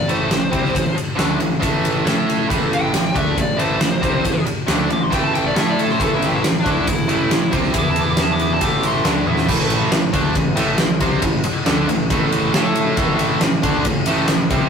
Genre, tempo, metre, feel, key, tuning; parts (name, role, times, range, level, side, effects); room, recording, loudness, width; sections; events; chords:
hard rock; 137 BPM; 4/4; straight; A minor; A4 = 440 Hz
dark smooth lead guitar; melody; 0.0-9.1 s; D4 to D6; -23 LUFS; left 1 dB; overdrive
high-gain distorted guitar; riff; 0.0-14.7 s; A2 to A4; -20 LUFS; right 1 dB; distortion
growling picked electric bass; bass; 0.0-14.7 s; A1 to A2; -25 LUFS; equal; overdrive
huge arena drum kit; drums; 0.1-14.6 s; crash cymbal, kick drum, ride cymbal, snare drum, toms; -19 LUFS; equal
moderate studio reverb, RT60 0.7 s; rough rehearsal-room recording, warm saturation; -15 LUFS; side -6 dB against mid
0.0-9.5 A section; 9.5-14.7 B section
lead electric guitar solo 0.0-9.5; drum fill 9.3
0.0 Am; 7.7 E5; 8.6 A5; 9.5 Am